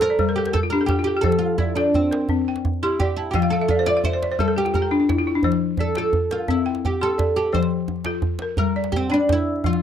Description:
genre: west african traditional, West African string and xylophone music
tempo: 114 BPM (dotted quarters)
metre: 12/8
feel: straight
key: F major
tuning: A4 = 438 Hz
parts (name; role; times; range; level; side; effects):
- oud; melody; 0.0-9.8 s; C4 to D5; -22 LUFS; right 2 dB; none
- balafon; arpeggios; 0.0-9.8 s; F3 to C6; -22 LUFS; left 4 dB; slapback echo
- djembe; percussion; 0.0-9.8 s; none; -25 LUFS; right 2 dB; none
room: light reverb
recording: dry, close 1970s-style studio recording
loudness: -19 LUFS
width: side -9 dB against mid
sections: 0.0-9.6 A section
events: balafon fill 0.0-1.2, 3.3-5.4; oud solo 0.0-9.6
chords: 0.2 G5; 1.2 F; 2.3 C5; 3.3 F; 4.4 G5; 5.4 F; 6.5 C; 7.5 F; 8.6 Gm

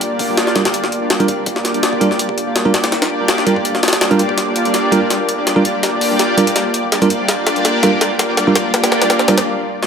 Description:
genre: drum and bass, jungle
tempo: 165 BPM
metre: 4/4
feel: swing 53% on 16ths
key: G minor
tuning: A4 = 440 Hz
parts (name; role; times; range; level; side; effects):
- lush unison pad; sustained chords; 0.0-9.5 s; Bb3 to D5; -17 LUFS; equal; chorus
- dark detuned saw bass; bass; 0.0-9.5 s; G1 to G2; -34 LUFS; left 1 dB; none
- jungle sampler-style drum kit; drums; 0.0-9.9 s; hi-hat, kick drum, snare drum; -17 LUFS; left 1 dB; high-pass filter on snare, studio ambience, high-pass filter on hats, high-pass filter on kick
- bell-like tine electric piano; stabs; 0.6-9.4 s; G3 to Bb4; -19 LUFS; right 2 dB; dub echo
room: moderate lush hall reverb, RT60 1.9 s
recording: none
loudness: -13 LUFS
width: side -6 dB against mid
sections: 0.0-9.9 A section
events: build-up 0.0-9.9; drum fill 4.4-9.5; break 9.5-9.9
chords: 0.0 Gm7

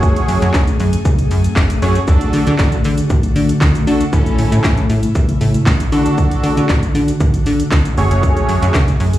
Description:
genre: dance-pop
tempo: 117 BPM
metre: 4/4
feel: straight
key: unclear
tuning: A4 = 440 Hz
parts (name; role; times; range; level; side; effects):
- big bright polysynth; accompaniment; 0.0-8.8 s; A3 to C#5; -19 LUFS; right 1 dB; sidechain pumping, slapback echo
- ethereal airy pad; sustained chords; 0.0-9.2 s; C#3 to G#4; -21 LUFS; left 2 dB; ensemble chorus, built-in reverb, sidechain pumping
- plucky analog bass; bass; 0.0-9.2 s; F#1 to D3; -16 LUFS; equal; sidechain pumping
- house drum kit; drums; 0.0-9.2 s; handclaps, hi-hat, kick drum, shaker, snare drum; -16 LUFS; equal; overdrive
room: light reverb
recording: live gig heard through the venue's PA, club reverb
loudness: -12 LUFS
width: side -14 dB against mid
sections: 0.0-9.2 A section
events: none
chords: 0.0 F#madd9; 2.1 D; 4.1 A; 5.9 D; 8.0 F#madd9

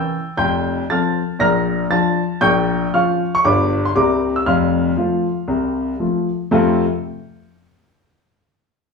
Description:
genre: jazz, stride piano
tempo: 117 BPM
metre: 4/4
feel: swing 58% on 8ths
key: F major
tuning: A4 = 440 Hz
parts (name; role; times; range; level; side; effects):
- warm grand piano; solo; 0.0-6.8 s; F1 to Bb6; -16 LUFS; left 2 dB; none
room: wet club reverb, RT60 0.9 s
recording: heard from further back in the room, studio ambience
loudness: -16 LUFS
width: side -4 dB against mid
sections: 0.0-6.5 A section; 6.5-8.6 B section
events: none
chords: 0.4 F; 1.4 Bb; 2.4 Bbm; 3.4 G7; 4.0 C9; 4.5 F

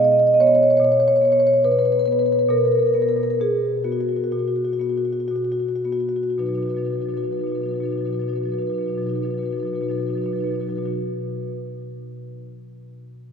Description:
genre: classical, contemporary piece for solo marimba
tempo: 54-78 BPM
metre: 4/4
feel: rubato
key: B major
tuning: A4 = 436 Hz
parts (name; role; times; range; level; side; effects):
- marimba with medium mallets; solo; 0.0-10.9 s; B2 to D#5; -19 LUFS; equal; none
room: wet church reverb, RT60 3.9 s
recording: heard from further back in the room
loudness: -18 LUFS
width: side -7 dB against mid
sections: 0.0-6.4 A section; 6.4-10.5 B section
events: slowing down 0.0-6.4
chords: 0.0 B69; 6.4 B

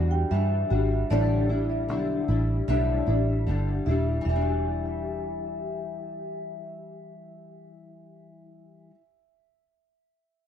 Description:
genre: indie pop, bedroom pop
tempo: 76 BPM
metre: 4/4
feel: straight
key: E minor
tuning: A4 = 439 Hz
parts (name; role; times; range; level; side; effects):
- nylon-string guitar; accompaniment; 0.0-9.0 s; A2 to F#4; -30 LUFS; left 4 dB; ensemble chorus, vibrato effect
- vintage muted picked electric bass; bass; 0.0-8.9 s; D#1 to G2; -26 LUFS; right 1 dB; none
- vibraphone with medium mallets; second line; 0.1-6.6 s; D5 to G5; -33 LUFS; right 1 dB; wide subtle chorus, dub echo
room: moderate spring reverb, RT60 1.8 s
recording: echo-heavy mix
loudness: -24 LUFS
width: side -9 dB against mid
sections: 0.0-4.3 A section; 4.3-7.4 B section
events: none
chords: 0.0 Em9; 1.1 A7sus4; 4.3 Em9

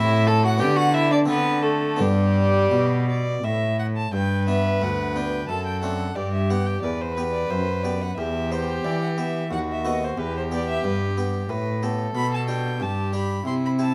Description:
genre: classical, baroque-style sonata movement with continuo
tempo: 90 BPM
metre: 3/4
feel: rubato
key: G major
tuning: A4 = 440 Hz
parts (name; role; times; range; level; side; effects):
- rich violin; melody; 0.0-13.9 s; G4 to C6; -31 LUFS; equal; none
- warm violin; second line; 0.0-13.9 s; G3 to B4; -29 LUFS; equal; none
- harpsichord; accompaniment; 0.0-13.9 s; D2 to G4; -32 LUFS; equal; none
- rich cello; bass; 0.0-13.9 s; D2 to E3; -26 LUFS; equal; none
room: light reverb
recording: none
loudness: -23 LUFS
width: mono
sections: 0.0-4.1 A section; 4.1-13.9 B section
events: none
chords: 0.0 Am; 0.6 Em9/D; 1.3 D5; 2.0 G; 5.5 D7/F#; 6.2 G; 8.2 Em; 9.5 B7/D#; 10.2 Em; 12.1 G/B

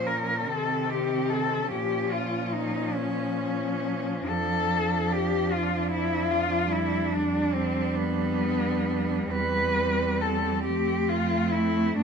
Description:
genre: classical, lyrical piece for cello ensemble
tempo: 42-51 BPM (dotted quarters)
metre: 6/8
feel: rubato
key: unclear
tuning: A4 = 440 Hz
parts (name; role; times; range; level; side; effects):
- warm cello; melody; 0.0-12.0 s; B3 to B4; -27 LUFS; left 4 dB; none
- clear cello; second line; 0.0-12.0 s; B3 to D4; -33 LUFS; right 12 dB; none
- warm cello; accompaniment; 0.0-12.0 s; Eb3 to A3; -32 LUFS; right 1 dB; none
- rich cello; bass; 0.0-12.0 s; E2 to C3; -31 LUFS; right 2 dB; none
room: light reverb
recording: none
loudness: -24 LUFS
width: side -6 dB against mid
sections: 0.0-12.0 A section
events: none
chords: 0.5 Cm6; 1.7 Bbm; 4.3 Dm/F; 6.7 G7/F; 9.3 C/E; 10.6 F

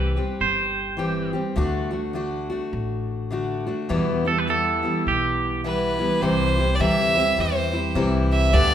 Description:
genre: honky-tonk and classic country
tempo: 103 BPM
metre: 4/4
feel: swing 61% on 8ths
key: unclear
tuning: A4 = 440 Hz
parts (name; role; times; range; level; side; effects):
- twangy electric guitar; second line; 0.0-5.6 s; G4 to C5; -24 LUFS; right 3 dB; none
- picked steel-string acoustic guitar; accompaniment; 0.0-8.7 s; E2 to G4; -24 LUFS; left 1 dB; none
- upright bass; bass; 0.0-8.7 s; G1 to E2; -26 LUFS; equal; none
- clear fiddle; melody; 5.6-8.7 s; B4 to E5; -22 LUFS; right 2 dB; none
room: moderate recital hall reverb, RT60 1.4 s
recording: minimal, uncompressed stereo recording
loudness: -20 LUFS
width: side -10 dB against mid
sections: 0.0-6.2 A section; 6.2-8.7 B section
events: clean electric guitar solo 0.0-6.2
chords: 0.0 C; 1.6 D; 3.9 Em; 6.2 C

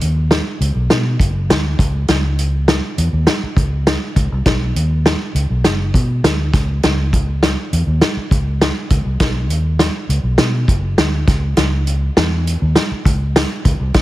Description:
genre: uptempo 1960s-style soul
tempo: 101 BPM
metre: 4/4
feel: straight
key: B major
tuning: A4 = 440 Hz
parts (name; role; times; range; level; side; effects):
- vintage muted fingered electric bass; bass; 0.0-14.0 s; F#1 to B2; -17 LUFS; equal; none
- vintage drum kit; drums; 0.0-14.0 s; hi-hat, kick drum, snare drum; -16 LUFS; equal; none
room: little or no reverb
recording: heavily compressed radio sound, multiband compression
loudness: -14 LUFS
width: side -16 dB against mid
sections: 0.0-14.0 A section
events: none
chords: none

